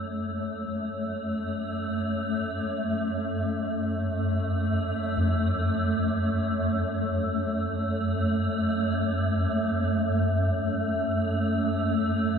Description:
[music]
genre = dark ambient drone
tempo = free time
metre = none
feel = none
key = unclear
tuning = A4 = 440 Hz
[part]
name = swarming drone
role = drone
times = 0.0-12.4 s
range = F#2 to A3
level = -25 LUFS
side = equal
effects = built-in reverb
[part]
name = gamelan-type bossed gongs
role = arpeggios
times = 5.2-12.4 s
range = E#2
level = -32 LUFS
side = equal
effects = none
[sound]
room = wet plate reverb, RT60 2.7 s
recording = echo-heavy mix, cassette tape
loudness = -25 LUFS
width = side -7 dB against mid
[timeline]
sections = 0.0-12.4 A section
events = fade-in on synth drone 0.0-12.4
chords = 0.0 F#mmaj7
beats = free time

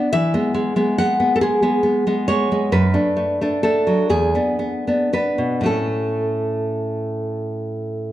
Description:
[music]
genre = romantic piece for solo classical guitar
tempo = 37-47 BPM (dotted quarters)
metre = 6/8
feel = rubato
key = unclear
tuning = A4 = 441 Hz
[part]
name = nylon-string guitar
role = solo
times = 0.0-8.1 s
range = E2 to F#5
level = -17 LUFS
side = equal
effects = none
[sound]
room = wet recital hall reverb, RT60 1.5 s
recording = dark, warm production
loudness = -17 LUFS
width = side -13 dB against mid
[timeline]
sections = 0.0-8.1 A section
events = none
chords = 0.1 E; 2.7 D/F#; 4.1 E7; 5.7 A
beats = | 0.12 1.41 | 2.72 4.11 | 5.66 7.24

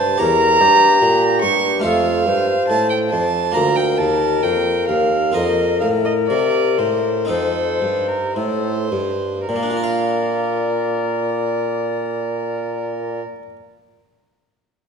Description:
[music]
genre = classical, baroque-style sonata movement with continuo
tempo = 52-74 BPM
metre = 4/4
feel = straight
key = Bb major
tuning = A4 = 438 Hz
[part]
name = bright baroque flute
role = melody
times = 0.0-13.2 s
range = G4 to D5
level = -21 LUFS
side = left 8 dB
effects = none
[part]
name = rich violin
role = second line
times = 0.0-13.2 s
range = A4 to C#6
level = -20 LUFS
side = right 4 dB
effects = none
[part]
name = harpsichord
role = accompaniment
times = 0.0-13.6 s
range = D2 to F5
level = -24 LUFS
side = equal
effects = none
[part]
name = mellow bassoon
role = bass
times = 0.0-13.2 s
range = D2 to C3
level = -22 LUFS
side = right 2 dB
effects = none
[sound]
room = moderate scoring stage reverb, RT60 1.6 s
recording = dark, warm production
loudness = -16 LUFS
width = side -6 dB against mid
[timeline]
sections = 0.0-9.5 A section; 9.5-14.1 B section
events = slowing down 0.2-9.5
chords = 0.2 Edim7; 1.8 F; 3.6 Bb/D; 5.3 Fsus4; 7.3 F7; 9.5 Bb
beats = 0.20 1.01 | 1.84 2.69 3.55 4.43 | 5.35 6.29 7.29 8.35 | 9.49 10.63 11.77 12.91

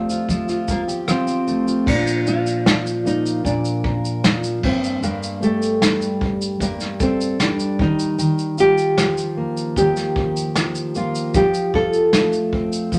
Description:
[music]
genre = acoustic pop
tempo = 76 BPM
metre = 4/4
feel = straight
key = Bb major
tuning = A4 = 440 Hz
[part]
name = nylon-string guitar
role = melody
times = 0.0-13.0 s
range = A3 to C5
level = -23 LUFS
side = equal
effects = none
[part]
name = fingerpicked steel-string acoustic guitar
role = accompaniment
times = 0.0-13.0 s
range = G2 to Bb4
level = -25 LUFS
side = equal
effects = none
[part]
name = soft brush drum kit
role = drums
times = 0.1-13.0 s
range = crash cymbal, kick drum, rim click, shaker, snare drum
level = -24 LUFS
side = equal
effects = none
[sound]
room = moderate studio reverb, RT60 0.8 s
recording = none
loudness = -20 LUFS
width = mono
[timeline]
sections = 0.0-1.9 A section; 1.9-13.0 B section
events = none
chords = 0.0 Fadd9; 1.9 Bb; 4.6 Gsus2; 7.8 Ebadd9; 11.3 Fadd9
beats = 0.29 1.08 | 1.87 2.66 3.45 4.24 | 5.03 5.82 6.61 7.40 | 8.19 8.98 9.77 10.55 | 11.34 12.13 12.92

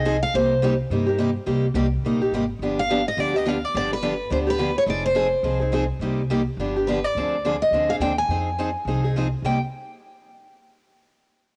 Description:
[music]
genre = acoustic string swing (jazz manouche)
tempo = 211 BPM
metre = 4/4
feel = swing 58% on 8ths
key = C minor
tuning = A4 = 440 Hz
[part]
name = picked steel-string acoustic guitar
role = melody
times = 0.0-0.8, 2.8-9.6 s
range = B4 to Ab5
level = -26 LUFS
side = equal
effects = cassette tape
[part]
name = picked steel-string acoustic guitar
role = accompaniment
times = 0.0-9.6 s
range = C3 to Ab4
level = -26 LUFS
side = equal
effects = cassette tape
[part]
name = upright bass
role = bass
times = 0.0-9.6 s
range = F1 to G2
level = -29 LUFS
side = equal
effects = none
[sound]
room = light reverb, studio reverb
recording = home recording on cassette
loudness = -23 LUFS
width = mono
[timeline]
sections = 0.0-7.2 A section; 7.2-9.4 B section; 9.4-10.6 C section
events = none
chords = 0.3 Cm7; 2.6 G7; 4.9 Fm7; 6.0 Cm7; 6.6 G7; 7.2 Dm7b5; 8.3 Fm7; 9.4 Cm7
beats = 0.05 | 0.34 0.62 0.90 1.19 | 1.47 1.75 2.04 2.32 | 2.60 2.89 3.17 3.46 | 3.74 4.02 4.31 4.59 | 4.88 5.16 5.45 5.73 | 6.01 6.30 6.58 6.87 | 7.16 7.44 7.72 8.01 | 8.29 8.58 8.86 9.15 | 9.43

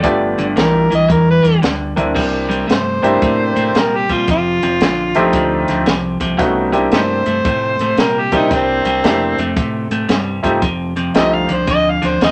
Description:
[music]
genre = electric blues shuffle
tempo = 113 BPM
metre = 4/4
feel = swing 65% on 8ths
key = C mixolydian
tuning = A4 = 441 Hz
[part]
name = electric slide guitar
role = second line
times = 0.0-0.5 s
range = D5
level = -23 LUFS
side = equal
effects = none
[part]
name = clear upright piano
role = accompaniment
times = 0.0-11.5 s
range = A3 to Bb4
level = -19 LUFS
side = equal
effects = none
[part]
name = electric guitar at the edge of break-up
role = riff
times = 0.0-12.3 s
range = F2 to A3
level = -20 LUFS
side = equal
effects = none
[part]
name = deep dub fingered electric bass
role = bass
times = 0.0-12.3 s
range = F1 to Bb2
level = -28 LUFS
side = equal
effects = none
[part]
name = compact cocktail drum kit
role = drums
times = 0.0-12.3 s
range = crash cymbal, hi-hat, kick drum, snare drum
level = -21 LUFS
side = equal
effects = none
[part]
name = overdriven harmonica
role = melody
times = 0.6-12.3 s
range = C4 to F5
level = -19 LUFS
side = equal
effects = none
[sound]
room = moderate studio reverb, RT60 0.6 s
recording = none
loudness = -15 LUFS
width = mono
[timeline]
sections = 0.0-2.2 A section; 2.2-12.3 A section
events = none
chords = 0.0 G7; 2.2 C7; 4.3 F7; 6.4 C7; 10.6 F7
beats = | 0.04 0.57 1.10 1.63 | 2.16 2.69 3.22 3.75 | 4.28 4.81 5.33 5.87 | 6.39 6.92 7.45 7.98 | 8.51 9.04 9.56 10.09 | 10.62 11.15 11.68 12.20

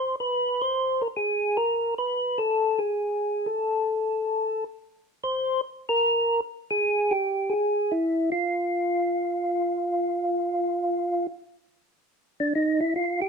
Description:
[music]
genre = jazz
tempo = 148 BPM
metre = 4/4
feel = swing 65% on 8ths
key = unclear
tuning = A4 = 439 Hz
[part]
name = percussive tonewheel organ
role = solo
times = 0.0-13.3 s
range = D4 to C5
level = -23 LUFS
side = equal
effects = slow rotary speaker
[sound]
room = light reverb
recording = minimal, uncompressed stereo recording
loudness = -23 LUFS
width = side -5 dB against mid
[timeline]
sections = 0.0-11.7 A section; 11.7-13.3 B section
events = tonewheel organ solo 11.7-13.3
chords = none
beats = | 0.33 0.74 1.15 1.56 | 1.97 2.37 2.78 3.19 | 3.60 4.00 4.41 4.82 | 5.23 5.63 6.04 6.45 | 6.85 7.26 7.67 8.07 | 8.48 8.88 9.29 9.70 | 10.10 10.51 10.91 11.32 | 11.72 12.13 12.53 12.94

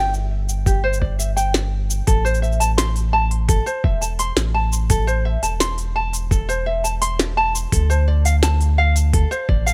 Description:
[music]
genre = folktronica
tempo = 85 BPM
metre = 4/4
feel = straight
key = A minor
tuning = A4 = 440 Hz
[part]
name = ukulele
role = arpeggios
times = 0.0-9.7 s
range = G4 to C6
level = -24 LUFS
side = equal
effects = low-pass filter, digital delay
[part]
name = warm sub bass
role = bass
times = 0.0-9.7 s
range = E1 to D2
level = -22 LUFS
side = equal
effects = tube saturation
[part]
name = minimal click drum kit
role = drums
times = 0.1-9.7 s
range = hi-hat, shaker, snare drum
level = -26 LUFS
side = equal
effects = small room ambience
[part]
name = electronic kick drum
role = drums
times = 0.7-9.6 s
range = none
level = -20 LUFS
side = equal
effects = small room ambience
[sound]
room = little or no reverb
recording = none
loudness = -19 LUFS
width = mono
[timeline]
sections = 0.0-9.7 A section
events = filter sweep on ukulele 0.0-9.7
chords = 0.0 N.C.; 2.1 Am; 7.7 Dm7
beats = 0.66 1.37 | 2.08 2.78 3.49 4.19 | 4.90 5.60 6.31 7.02 | 7.72 8.43 9.13

